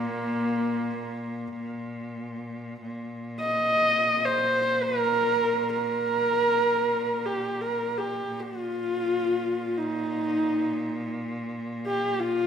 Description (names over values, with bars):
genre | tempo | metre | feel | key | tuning
mongolian traditional, Mongolian folk | free time | none | none | Bb zhi mode | A4 = 444 Hz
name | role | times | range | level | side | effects
warm horsehead fiddle | melody | 0.0-12.5 s | Bb3 to Eb5 | -24 LUFS | equal | none
bright cello | drone | 0.0-12.5 s | Bb2 | -33 LUFS | equal | none
room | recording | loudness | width
wet recital hall reverb, RT60 1.6 s | none | -24 LUFS | side -8 dB against mid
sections
0.0-2.8 A section; 2.8-12.5 A section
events
none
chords
none